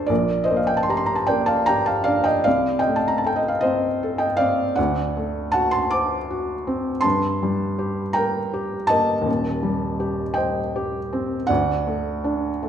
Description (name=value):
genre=classical, romantic nocturne for solo piano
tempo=50-55 BPM (dotted quarters)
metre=12/8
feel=rubato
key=G minor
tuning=A4 = 439 Hz
part: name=felt-muted upright piano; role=solo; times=0.0-12.7 s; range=Eb1 to D6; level=-19 LUFS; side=equal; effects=none
room=wet recital hall reverb, RT60 1.3 s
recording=minimal, uncompressed stereo recording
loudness=-19 LUFS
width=side -9 dB against mid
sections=0.0-12.7 A section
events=none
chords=0.1 Gm/Bb; 2.5 Adim/C; 4.8 D7; 7.0 Gm; 9.3 Cm/Eb; 11.5 D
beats=| 0.10 1.29 2.46 3.64 | 4.78 5.93 7.04 8.17 | 9.28 10.38 11.49 12.63